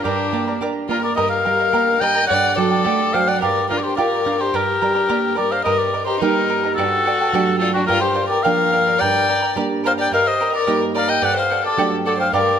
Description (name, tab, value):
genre	andean folk, Andean ensemble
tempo	107 BPM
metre	2/4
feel	straight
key	G minor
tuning	A4 = 441 Hz
part	warm oboe	melody	0.0-12.6 s	F#4 to G5	-19 LUFS	left 2 dB	none
part	rich violin	second line	0.0-12.6 s	D4 to Eb5	-22 LUFS	left 6 dB	tape echo
part	charango	accompaniment	0.0-12.6 s	G4 to Bb5	-23 LUFS	right 4 dB	none
part	nylon-string guitar	accompaniment	0.0-12.6 s	G2 to F4	-24 LUFS	right 6 dB	none
room	moderate recital hall reverb, RT60 1.7 s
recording	close, detailed microphones, lossy compression artefacts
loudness	-16 LUFS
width	side -8 dB against mid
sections	0.0-5.7 A section; 5.7-12.6 A section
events	none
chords	0.0 Gm; 1.2 Eb/G; 2.3 D/G; 3.4 Bb/G; 4.5 Gm; 5.7 Eb/G; 6.8 D/G; 7.9 Bb/G; 9.0 Gm; 10.1 Eb/G; 11.2 D/G